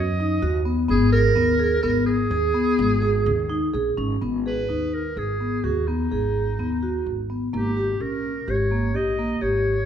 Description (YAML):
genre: contemporary instrumental, chamber music in an uneven meter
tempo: 127 BPM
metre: 7/4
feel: straight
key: G# minor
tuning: A4 = 440 Hz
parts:
  - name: bright clarinet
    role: melody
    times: 0.0-9.9 s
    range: D#4 to D#5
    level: -26 LUFS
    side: right 1 dB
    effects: none
  - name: vibraphone with medium mallets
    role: arpeggios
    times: 0.0-9.7 s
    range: A#3 to G#4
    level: -23 LUFS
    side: equal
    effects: none
  - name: upright bass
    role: bass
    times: 0.0-9.8 s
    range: G#1 to F#2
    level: -25 LUFS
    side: equal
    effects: none
room: wet recital hall reverb, RT60 1.7 s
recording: minimal, uncompressed stereo recording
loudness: -20 LUFS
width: side -9 dB against mid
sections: 0.0-4.2 A section; 4.2-9.9 B section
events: none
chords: 0.0 B; 0.9 G#m; 7.5 D#7/G#